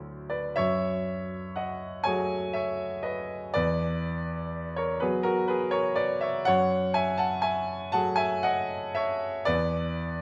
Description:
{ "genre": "classical, impressionist solo piano", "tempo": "40 BPM (dotted quarters)", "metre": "6/8", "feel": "uneven beats, rubato", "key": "unclear", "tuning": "A4 = 440 Hz", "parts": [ { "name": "clear concert grand piano", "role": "solo", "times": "0.0-10.2 s", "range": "E2 to A5", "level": "-28 LUFS", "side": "equal", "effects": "none" } ], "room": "moderate recital hall reverb, RT60 1.4 s", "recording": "none", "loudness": "-28 LUFS", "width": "mono", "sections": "0.0-10.2 A section", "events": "none", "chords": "0.0 D9; 0.6 F#madd9; 3.6 E9; 6.5 F#madd9; 9.5 E7(no3)", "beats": "| 0.56 2.04 | 3.56 5.02 | 6.47 7.93 | 9.47" }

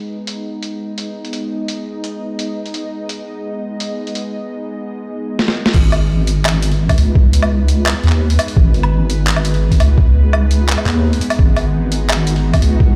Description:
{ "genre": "half-time drum and bass", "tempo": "170 BPM", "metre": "4/4", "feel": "half-time", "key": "G# minor", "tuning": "A4 = 440 Hz", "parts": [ { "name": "bowed-like drone", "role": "sustained chords", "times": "0.0-13.0 s", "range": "G#3 to D#5", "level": "-26 LUFS", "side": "equal", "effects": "built-in reverb, vintage 12-bit sampler grit, sidechain pumping" }, { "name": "boom bap sampler-style drum kit", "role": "drums", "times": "0.3-12.7 s", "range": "crash cymbal, handclaps, hi-hat, snare drum, woodblock", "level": "-23 LUFS", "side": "equal", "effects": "low-pass filter on hats, studio ambience, low-pass filter on snare, low-pass filter on cymbals, low-pass filter on perc" }, { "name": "deep soft wobble bass", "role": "bass", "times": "5.7-13.0 s", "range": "G#1 to D#2", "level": "-16 LUFS", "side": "equal", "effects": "chorus" }, { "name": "electronic kick drum", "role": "drums", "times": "5.7-12.9 s", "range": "none", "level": "-15 LUFS", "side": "equal", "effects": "studio ambience" } ], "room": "little or no reverb", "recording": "played on a big sound system in a bare room, large studio reverb", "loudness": "-15 LUFS", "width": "mono", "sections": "0.0-5.7 A section; 5.7-13.0 B section", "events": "filter sweep on synth drone 0.0-5.7; drum fill 5.4-5.7; drop 5.7-13.0", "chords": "0.0 G#m", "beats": "| 0.10 0.45 0.80 1.16 | 1.51 1.86 2.21 2.57 | 2.92 3.27 3.63 3.98 | 4.33 4.68 5.04 5.39 | 5.74 6.10 6.45 6.80 | 7.16 7.51 7.86 8.21 | 8.57 8.92 9.27 9.63 | 9.98 10.33 10.68 11.04 | 11.39 11.74 12.10 12.45 | 12.80" }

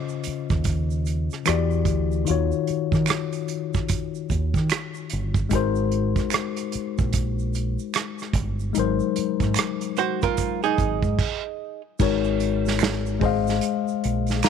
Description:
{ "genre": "R&B, neo-soul", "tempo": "74 BPM", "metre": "4/4", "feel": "swing 62% on 16ths", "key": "unclear", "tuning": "A4 = 443 Hz", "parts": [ { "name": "tine electric piano", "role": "accompaniment", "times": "0.0-14.5 s", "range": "Db3 to Bb5", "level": "-26 LUFS", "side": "left 11 dB", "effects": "none" }, { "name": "tube shaker and finger snaps", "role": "percussion", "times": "0.1-14.5 s", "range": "none", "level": "-35 LUFS", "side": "right 15 dB", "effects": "none" }, { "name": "unplugged drum kit", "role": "drums", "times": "0.2-14.5 s", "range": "crash cymbal, hi-hat, kick drum, rim click, snare drum", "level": "-26 LUFS", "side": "right 4 dB", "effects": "none" }, { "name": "deep dub fingered electric bass", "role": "bass", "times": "0.3-14.4 s", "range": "G1 to Eb3", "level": "-25 LUFS", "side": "right 1 dB", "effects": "none" }, { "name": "archtop guitar, miked and amplified", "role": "second line", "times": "10.0-11.8 s", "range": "Eb4 to C5", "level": "-24 LUFS", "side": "right 14 dB", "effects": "none" } ], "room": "studio ambience", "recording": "1960s-style stereo with parts hard left and right", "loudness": "-22 LUFS", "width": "side -7 dB against mid", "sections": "0.0-12.0 A section; 12.0-14.5 B section", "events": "stop 11.2-12.0", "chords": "0.0 Dbmaj9; 1.5 Em9; 2.3 Ebm9; 5.5 Ab9; 12.0 Ab7sus4; 13.2 Fm7/Ab", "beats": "0.65 1.46 | 2.27 3.08 3.89 4.70 | 5.51 6.32 7.13 7.94 | 8.76 9.56 10.38 11.19 | 12.00 12.81 13.62 14.43" }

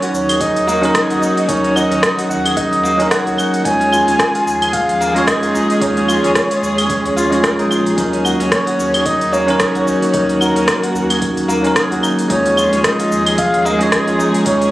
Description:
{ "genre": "organic downtempo", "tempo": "111 BPM", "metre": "4/4", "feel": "swing 58% on 16ths", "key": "Eb minor", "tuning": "A4 = 442 Hz", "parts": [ { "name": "breathy flute-like synth lead", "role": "melody", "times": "0.0-14.7 s", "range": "Bb4 to Ab5", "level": "-18 LUFS", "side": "equal", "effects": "chorus, tape echo" }, { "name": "bell-like tine electric piano", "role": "accompaniment", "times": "0.0-14.7 s", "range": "Gb3 to Db5", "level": "-18 LUFS", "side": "right 1 dB", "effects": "sidechain pumping, ping-pong delay" }, { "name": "dark studio string section", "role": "sustained chords", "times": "0.0-14.7 s", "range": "Eb3 to Ab4", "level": "-22 LUFS", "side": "left 1 dB", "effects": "sidechain pumping" }, { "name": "kora", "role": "arpeggios", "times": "0.0-14.7 s", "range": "Bb3 to Bb4", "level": "-21 LUFS", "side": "equal", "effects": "ping-pong delay" }, { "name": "organic electronic drum kit", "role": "drums", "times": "0.0-14.7 s", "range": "cabasa, claves, hi-hat, rim click", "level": "-20 LUFS", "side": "equal", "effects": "studio reverb" }, { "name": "warm sub bass", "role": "bass", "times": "0.1-14.7 s", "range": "Bb1 to Eb2", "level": "-31 LUFS", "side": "equal", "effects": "sidechain pumping" }, { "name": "electronic kick drum", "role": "drums", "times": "0.4-14.6 s", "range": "none", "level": "-27 LUFS", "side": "equal", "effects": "overdrive, studio reverb" }, { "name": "udu", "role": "percussion", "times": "0.9-14.3 s", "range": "none", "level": "-41 LUFS", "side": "right 1 dB", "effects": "none" } ], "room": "light reverb", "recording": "recorded on a phone in the room, studio ambience", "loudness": "-12 LUFS", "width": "side -16 dB against mid", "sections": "0.0-14.7 A section", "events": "none", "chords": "0.0 Ebm7; 3.7 Db/Eb; 8.0 Ebm7", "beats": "0.41 0.95 | 1.49 2.03 2.57 3.11 | 3.65 4.19 4.73 5.27 | 5.81 6.35 6.89 7.43 | 7.97 8.52 9.06 9.60 | 10.14 10.68 11.22 11.76 | 12.30 12.84 13.38 13.92 | 14.46" }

